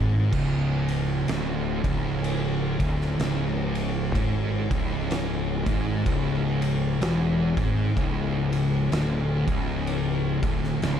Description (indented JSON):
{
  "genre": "stoner and doom metal",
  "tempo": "63 BPM",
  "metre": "4/4",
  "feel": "swing 58% on 8ths",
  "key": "C# minor",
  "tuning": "A4 = 440 Hz",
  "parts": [
    { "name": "thick fuzz guitar", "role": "riff", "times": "0.0-11.0 s", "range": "C#2 to G#2", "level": "-28 LUFS", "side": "left 7 dB", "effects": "distortion" },
    { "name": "thick fuzz guitar", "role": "riff", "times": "0.0-11.0 s", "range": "C#2 to G#2", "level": "-27 LUFS", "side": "right 6 dB", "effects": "distortion" },
    { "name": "fuzz fingered electric bass", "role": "bass", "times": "0.0-11.0 s", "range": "C#1 to G#1", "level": "-30 LUFS", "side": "equal", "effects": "overdrive" },
    { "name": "oversized low-tuned drum kit", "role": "drums", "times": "0.3-11.0 s", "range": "crash cymbal, kick drum, ride cymbal, snare drum", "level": "-30 LUFS", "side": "equal", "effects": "none" }
  ],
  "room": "moderate large studio reverb, RT60 1.0 s, small room ambience",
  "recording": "dark, warm production",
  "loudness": "-23 LUFS",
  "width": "side -9 dB against mid",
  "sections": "0.0-11.0 A section",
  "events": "none",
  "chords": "0.0 C#m"
}